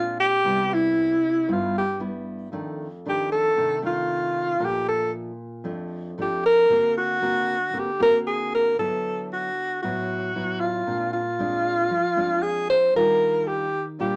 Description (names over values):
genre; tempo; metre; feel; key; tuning
bossa nova; 115 BPM; 4/4; straight; unclear; A4 = 440 Hz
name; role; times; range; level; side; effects
breathy alto saxophone; melody; 0.0-14.2 s; E4 to C5; -24 LUFS; equal; none
nylon-string guitar; accompaniment; 0.0-14.2 s; F2 to F#4; -33 LUFS; equal; none
room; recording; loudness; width
moderate small room reverb, RT60 0.5 s; none; -23 LUFS; mono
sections
0.0-8.8 A section; 8.8-14.2 B section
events
alto saxophone solo 0.0-8.8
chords
0.4 Cmaj7; 2.5 F6; 4.6 Bbmaj7; 6.7 Daug7; 8.8 D69; 10.9 Bb9; 13.0 Ebmaj9